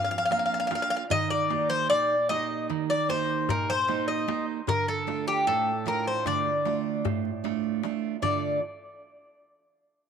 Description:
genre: greek folk, Greek bouzouki band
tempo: 152 BPM (eighths)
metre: 9/8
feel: straight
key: D phrygian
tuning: A4 = 440 Hz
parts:
  - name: Greek bouzouki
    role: melody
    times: 0.0-8.6 s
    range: G4 to F5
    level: -26 LUFS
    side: left 2 dB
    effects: none
  - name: picked steel-string acoustic guitar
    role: accompaniment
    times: 0.0-8.6 s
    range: F2 to A4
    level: -31 LUFS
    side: right 12 dB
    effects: none
  - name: darbuka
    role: percussion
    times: 0.3-8.6 s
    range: none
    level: -34 LUFS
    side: left 6 dB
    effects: none
room: wet spring reverb, RT60 2.2 s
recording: 1960s-style stereo with parts hard left and right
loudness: -24 LUFS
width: side -7 dB against mid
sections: 0.0-8.2 A section; 8.2-10.1 B section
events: none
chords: 0.0 Bb; 1.1 Eb; 4.7 Dm

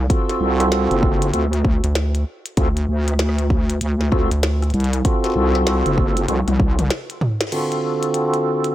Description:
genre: glitch hop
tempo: 97 BPM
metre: 4/4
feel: swing 63% on 16ths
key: unclear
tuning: A4 = 439 Hz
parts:
  - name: wobble bass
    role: bass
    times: 0.0-6.9 s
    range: F#1 to D2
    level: -19 LUFS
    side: equal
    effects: chorus, tube saturation
  - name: tonewheel organ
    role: stabs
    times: 0.1-8.7 s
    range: D3 to A4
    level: -20 LUFS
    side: right 1 dB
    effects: overdrive, chorus vibrato, slow rotary speaker, sidechain pumping, low-pass filter, digital delay
  - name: electronic kick drum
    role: drums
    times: 0.1-6.8 s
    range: none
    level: -19 LUFS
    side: equal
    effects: none
  - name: glitchy drum kit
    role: drums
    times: 0.1-8.7 s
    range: crash cymbal, hi-hat, rim click, snare drum, toms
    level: -24 LUFS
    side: left 1 dB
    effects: overdrive
  - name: rubbery square bass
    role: bass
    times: 1.8-4.7 s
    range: D2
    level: -18 LUFS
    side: equal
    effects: none
room: little or no reverb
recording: none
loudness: -17 LUFS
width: side -14 dB against mid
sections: 0.0-7.5 A section; 7.5-8.7 B section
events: drum fill 6.3-7.5; break 6.9-7.5; band accent 7.4-7.7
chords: 0.0 D7#9

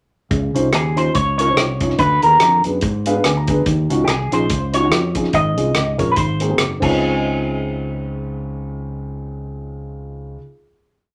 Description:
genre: uptempo gospel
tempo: 144 BPM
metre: 4/4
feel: swing 57% on 8ths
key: Db major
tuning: A4 = 440 Hz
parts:
  - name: dark baby grand piano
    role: accompaniment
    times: 0.3-10.4 s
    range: Db2 to Bb5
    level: -24 LUFS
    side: equal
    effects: none
  - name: fingered electric bass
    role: bass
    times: 0.3-10.4 s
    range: Gb1 to Ab2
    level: -25 LUFS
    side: equal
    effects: none
  - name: natural country drum kit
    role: drums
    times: 0.3-6.9 s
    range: crash cymbal, hi-hat, kick drum, rim click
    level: -24 LUFS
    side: equal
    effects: none
  - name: electric guitar with an envelope filter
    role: melody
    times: 0.7-10.4 s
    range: G4 to Eb5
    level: -21 LUFS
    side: equal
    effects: none
room: wet small room reverb, RT60 0.5 s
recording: none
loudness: -18 LUFS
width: mono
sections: 0.3-7.0 breakdown; 7.0-10.3 final hit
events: grand piano fill 2.8-3.7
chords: 0.3 Dbmaj9; 2.0 Bb7b9/D; 3.7 Ebm9; 5.3 Db/Ab; 6.2 Ab9; 6.8 Dbmaj9

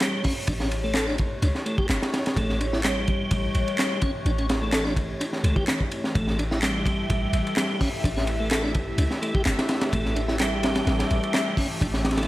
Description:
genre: breakbeat, breaks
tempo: 127 BPM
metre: 4/4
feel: straight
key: unclear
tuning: A4 = 438 Hz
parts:
  - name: phased analog pad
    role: sustained chords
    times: 0.0-12.3 s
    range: E3 to E5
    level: -31 LUFS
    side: equal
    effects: phaser, chorus, sidechain pumping
  - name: tonewheel organ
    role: riff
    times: 0.0-12.3 s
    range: G3 to A4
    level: -29 LUFS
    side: equal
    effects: chorus vibrato, tube saturation, tape echo
  - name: crunchy breakbeat drum kit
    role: drums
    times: 0.0-12.3 s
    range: hi-hat, kick drum, ride cymbal, snare drum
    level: -26 LUFS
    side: equal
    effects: none
  - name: electronic handclaps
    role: drums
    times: 0.0-11.4 s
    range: none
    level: -30 LUFS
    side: equal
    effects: overdrive
  - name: warm 808-style bass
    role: bass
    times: 0.5-12.3 s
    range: G1 to C#2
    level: -27 LUFS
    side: equal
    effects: none
room: small room ambience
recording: vinyl crackle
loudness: -22 LUFS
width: side -16 dB against mid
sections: 0.0-12.3 A section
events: none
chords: 0.0 A7

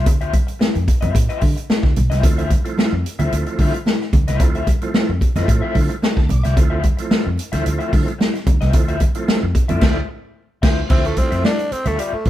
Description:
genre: funk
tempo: 111 BPM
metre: 4/4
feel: straight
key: D minor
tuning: A4 = 441 Hz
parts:
  - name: electric guitar at the edge of break-up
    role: accompaniment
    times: 0.0-12.3 s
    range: F4 to E5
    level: -27 LUFS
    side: left 6 dB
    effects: tremolo
  - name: vintage muted fingered electric bass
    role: bass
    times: 0.0-12.3 s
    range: B1 to D3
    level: -20 LUFS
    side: equal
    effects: none
  - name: swinging big-band drum kit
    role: drums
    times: 0.1-12.3 s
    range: crash cymbal, hi-hat, kick drum, snare drum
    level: -17 LUFS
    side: equal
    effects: none
  - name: congas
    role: percussion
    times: 0.3-12.3 s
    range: none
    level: -28 LUFS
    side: right 1 dB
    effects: none
  - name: tonewheel organ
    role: stabs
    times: 2.2-12.3 s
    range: E3 to D5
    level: -26 LUFS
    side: right 3 dB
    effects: chorus vibrato, fast rotary speaker
  - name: growling tenor saxophone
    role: melody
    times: 10.9-12.3 s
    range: G3 to D4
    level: -22 LUFS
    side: equal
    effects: none
room: light reverb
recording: band playing live in one room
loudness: -15 LUFS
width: side -13 dB against mid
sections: 0.0-10.9 A section; 10.9-12.3 B section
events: tonewheel organ fill 5.8-6.6; band accent 9.8-10.9; tenor saxophone solo 10.9-12.3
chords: 0.0 Dm9

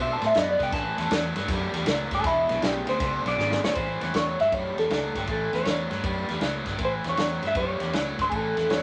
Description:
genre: electric blues shuffle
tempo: 158 BPM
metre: 4/4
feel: swing 66% on 8ths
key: A mixolydian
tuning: A4 = 440 Hz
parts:
  - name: electric guitar through a small old amp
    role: melody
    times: 0.0-8.8 s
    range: E4 to A5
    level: -28 LUFS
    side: equal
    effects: phaser
  - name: overdriven electric guitar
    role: riff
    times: 0.0-8.8 s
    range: E2 to C4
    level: -33 LUFS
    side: equal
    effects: none
  - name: vintage muted fingered electric bass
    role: bass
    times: 0.0-8.8 s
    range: E1 to B2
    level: -36 LUFS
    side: equal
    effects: none
  - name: vintage drum kit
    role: drums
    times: 0.2-8.8 s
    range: kick drum, ride cymbal, snare drum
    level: -32 LUFS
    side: equal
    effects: none
room: moderate studio reverb, RT60 0.8 s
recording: none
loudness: -26 LUFS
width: mono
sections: 0.0-3.8 A section; 3.8-8.8 B section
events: clean electric guitar solo 0.0-3.8; drum fill 3.4-3.8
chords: 0.0 D6; 0.7 A6; 2.2 E6; 3.8 A6

